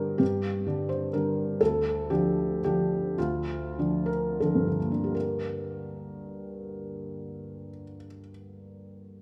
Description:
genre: neoclassical minimalist piano.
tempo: 78-132 BPM.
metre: 3/4.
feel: rubato.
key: G minor.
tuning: A4 = 440 Hz.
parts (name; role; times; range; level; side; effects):
felt-muted upright piano; solo; 0.0-9.2 s; D2 to C5; -29 LUFS; equal; none.
room: moderate recital hall reverb, RT60 1.7 s.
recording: none.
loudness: -28 LUFS.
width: mono.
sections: 0.0-5.1 A section; 5.1-9.2 B section.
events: slowing down 0.9-5.1.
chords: 0.0 Gm; 1.6 Dm; 5.1 Gm.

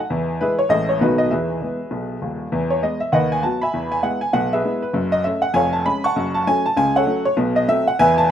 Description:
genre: jazz, stride piano.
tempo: 198 BPM.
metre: 4/4.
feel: swing 61% on 8ths.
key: E major.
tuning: A4 = 440 Hz.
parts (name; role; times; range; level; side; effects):
bright upright piano; solo; 0.0-8.3 s; D#1 to C#6; -17 LUFS; equal; none.
room: light reverb, small room ambience.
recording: rough home demo mix.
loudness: -17 LUFS.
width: side -10 dB against mid.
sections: 0.0-2.5 A section; 2.5-8.3 B section.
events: none.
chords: 0.1 E; 0.7 Amaj7; 1.0 B7; 1.3 E; 3.1 B/D#; 3.7 E; 4.9 F#m; 5.5 C#/E#; 6.1 F#m; 7.4 B5.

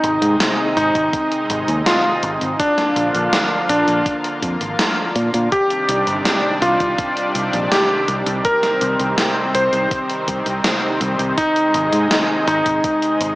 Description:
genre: synthwave.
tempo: 82 BPM.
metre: 4/4.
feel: straight.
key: C minor.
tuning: A4 = 441 Hz.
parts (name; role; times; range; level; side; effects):
clear electric grand piano; melody; 0.0-13.4 s; D4 to C5; -19 LUFS; equal; tape echo, shimmer reverb.
analog string pad; sustained chords; 0.0-13.4 s; C3 to F4; -21 LUFS; equal; ensemble chorus, sidechain pumping, shimmer reverb.
picked electric bass; bass; 0.0-13.3 s; G1 to Bb2; -23 LUFS; equal; sidechain pumping.
gated 80s digital drum machine; drums; 0.0-13.4 s; hi-hat, snare drum; -21 LUFS; equal; gated reverb, gated reverb snare.
electronic kick drum; drums; 1.0-13.0 s; none; -29 LUFS; equal; none.
room: moderate lush hall reverb, RT60 2.5 s.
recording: small speaker sound.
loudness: -15 LUFS.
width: side -20 dB against mid.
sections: 0.0-13.4 A section.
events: none.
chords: 0.0 Ab; 2.6 Bb; 5.5 Cmadd9; 11.4 Ab.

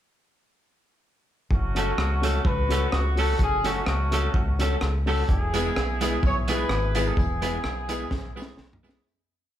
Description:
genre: ska.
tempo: 127 BPM.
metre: 4/4.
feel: swing 54% on 8ths.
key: F# minor.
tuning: A4 = 440 Hz.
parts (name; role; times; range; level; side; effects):
clear horn section; melody; 1.5-8.6 s; A3 to C#5; -29 LUFS; left 1 dB; none.
deep dub fingered electric bass; bass; 1.5-9.0 s; E1 to C#2; -26 LUFS; equal; none.
crunchy breakbeat drum kit; drums; 1.5-9.0 s; hi-hat, kick drum, rim click, snare drum, toms; -27 LUFS; equal; none.
warm upright piano; stabs; 1.7-9.0 s; B3 to A4; -32 LUFS; left 4 dB; none.
electric guitar at the edge of break-up; accompaniment; 1.8-9.0 s; G#3 to A4; -30 LUFS; right 3 dB; tremolo.
tambourine; percussion; 5.5-8.9 s; none; -44 LUFS; left 4 dB; tape echo.
room: moderate large studio reverb, RT60 1.1 s.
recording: band playing live in one room.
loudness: -22 LUFS.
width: side -11 dB against mid.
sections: 1.5-9.1 head.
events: fade-out 7.2-9.1; drum fill 8.1-9.1.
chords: 1.5 F#m; 5.3 E.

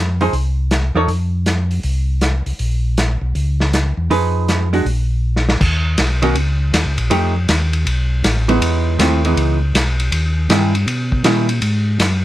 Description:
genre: soul jazz organ trio.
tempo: 160 BPM.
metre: 4/4.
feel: swing 66% on 8ths.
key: unclear.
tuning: A4 = 445 Hz.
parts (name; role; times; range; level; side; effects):
mellow tonewheel organ; bass; 0.0-12.2 s; A1 to Cb3; -17 LUFS; equal; slow rotary speaker.
hollow-body jazz guitar; accompaniment; 0.2-1.1, 4.1-11.5 s; Eb3 to Db5; -17 LUFS; right 2 dB; none.
vintage drum kit; drums; 0.2-12.1 s; crash cymbal, hi-hat, kick drum, ride cymbal, snare drum; -20 LUFS; equal; none.
room: little or no reverb.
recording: close, detailed microphones.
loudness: -14 LUFS.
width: side -14 dB against mid.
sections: 0.0-5.6 A section; 5.6-12.2 B section.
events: drum fill 5.2-5.6.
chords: 0.0 F7(no3); 1.1 F5; 2.6 Bbm; 4.1 Fm7b5; 4.9 N.C.; 5.6 Eb7(no3); 7.1 F9; 8.6 Emaj7; 10.1 Eb7b9; 11.6 Ab7(no3).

